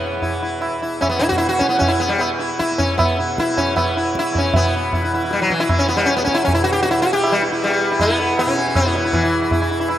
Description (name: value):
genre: indian classical, Hindustani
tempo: 155 BPM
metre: 3/4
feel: straight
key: E raga shivaranjani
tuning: A4 = 441 Hz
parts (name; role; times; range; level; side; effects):
- sitar; melody; 0.0-10.0 s; E3 to G4; -17 LUFS; equal; slapback echo
- tanpura; drone; 0.0-10.0 s; E2 to E3; -25 LUFS; right 1 dB; none
- tabla; percussion; 0.2-10.0 s; none; -22 LUFS; right 1 dB; none
room: wet lush hall reverb, RT60 2.5 s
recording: rough home demo mix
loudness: -16 LUFS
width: side -12 dB against mid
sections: 0.0-4.5 A section; 4.5-10.0 B section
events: speeding up 0.0-10.0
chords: none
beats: 0.23 0.62 | 1.02 1.42 1.81 | 2.21 2.60 2.99 | 3.38 3.77 4.16 | 4.55 4.94 5.32 | 5.71 6.09 6.48 | 6.86 7.24 7.62 | 8.00 8.38 8.76 | 9.13 9.51 9.88